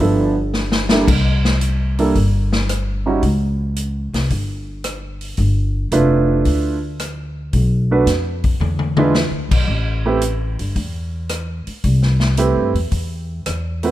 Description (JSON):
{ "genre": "jazz, big band swing", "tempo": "112 BPM", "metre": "4/4", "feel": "swing 69% on 8ths", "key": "unclear", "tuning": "A4 = 440 Hz", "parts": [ { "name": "warm grand piano", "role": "accompaniment", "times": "0.0-13.9 s", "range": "F3 to B4", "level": "-18 LUFS", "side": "right 3 dB", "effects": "none" }, { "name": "upright bass", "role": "bass", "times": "0.0-13.9 s", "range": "F1 to G2", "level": "-19 LUFS", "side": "equal", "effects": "none" }, { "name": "swinging big-band drum kit", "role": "drums", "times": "0.0-13.9 s", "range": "crash cymbal, hi-hat, kick drum, rim click, snare drum, toms", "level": "-21 LUFS", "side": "left 2 dB", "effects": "none" } ], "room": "little or no reverb", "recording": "none", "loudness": "-16 LUFS", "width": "side -14 dB against mid", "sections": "0.0-13.9 A section", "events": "drum fill 0.5-1.1, 8.6-9.1", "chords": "0.0 G13; 1.1 C; 3.2 N.C.; 5.4 G13; 7.5 Bm7; 8.6 E7b9; 9.7 Am7", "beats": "0.00 0.54 | 1.08 1.61 2.15 2.69 | 3.23 3.76 4.30 4.84 | 5.38 5.92 6.45 6.99 | 7.53 8.07 8.61 9.14 | 9.68 10.22 10.76 11.30 | 11.83 12.37 12.91 13.45" }